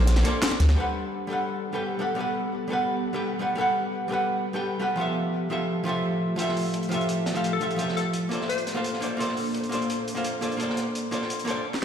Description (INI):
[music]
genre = liquid drum and bass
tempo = 171 BPM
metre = 4/4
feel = straight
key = G major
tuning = A4 = 440 Hz
[part]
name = archtop guitar, miked and amplified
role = accompaniment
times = 0.0-11.7 s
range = F3 to G5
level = -26 LUFS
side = equal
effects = ping-pong delay
[part]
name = ethereal airy pad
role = sustained chords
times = 0.0-11.6 s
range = A3 to F#5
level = -32 LUFS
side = right 1 dB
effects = ensemble chorus, built-in reverb, tremolo
[part]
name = warm sub bass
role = bass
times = 0.0-0.8 s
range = Bb1 to D2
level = -19 LUFS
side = equal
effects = none
[part]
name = crunchy breakbeat drum kit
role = drums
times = 0.1-0.8, 6.4-11.6 s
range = hi-hat, snare drum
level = -35 LUFS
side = equal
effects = high-pass filter on hats, high-pass filter on snare, high-pass filter on room
[part]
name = drum and bass drum kit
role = drums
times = 0.1-0.8, 11.7-11.8 s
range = hi-hat, snare drum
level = -28 LUFS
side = equal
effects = overdrive
[part]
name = bongos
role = percussion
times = 0.6-0.7 s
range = none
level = -38 LUFS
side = right 1 dB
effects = none
[part]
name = glassy wavetable pluck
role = melody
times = 7.5-8.8 s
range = A4 to C5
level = -33 LUFS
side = left 6 dB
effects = chorus, ping-pong delay
[sound]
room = wet concert hall reverb, RT60 2.1 s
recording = played on a big sound system in a bare room, stone room reverb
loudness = -24 LUFS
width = side -8 dB against mid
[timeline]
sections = 0.8-11.8 A section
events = none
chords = 0.0 Bbmaj9; 0.8 Gmaj9; 5.0 Fmaj9; 8.3 Bbmaj9